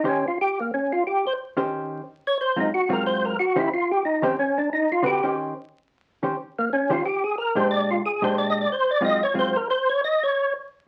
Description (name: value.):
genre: jazz.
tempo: 180 BPM.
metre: 4/4.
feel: swing 63% on 8ths.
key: Eb mixolydian.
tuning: A4 = 440 Hz.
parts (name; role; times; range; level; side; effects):
percussive tonewheel organ; melody; 0.0-10.5 s; Bb3 to Eb5; -24 LUFS; equal; slow rotary speaker, chorus vibrato.
hollow-body jazz guitar; accompaniment; 0.0-9.5 s; Ab2 to C5; -28 LUFS; equal; none.
room: wet studio reverb, RT60 0.5 s.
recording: very old 78 rpm record, vinyl crackle, nothing above 10.5 kHz.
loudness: -24 LUFS.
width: mono.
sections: 0.0-10.9 A section.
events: tonewheel organ solo 0.0-10.9.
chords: 0.0 Eb13; 2.4 Ab6; 3.7 Eb6; 7.7 Bb6; 9.0 Ab6; 10.3 N.C..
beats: 0.04 0.37 0.70 | 1.03 1.37 1.70 2.03 | 2.37 2.70 3.03 3.36 | 3.70 4.03 4.36 4.69 | 5.03 5.36 5.69 6.03 | 6.36 6.69 7.02 7.36 | 7.69 8.02 8.35 8.69 | 9.02 9.35 9.68 10.01 | 10.35.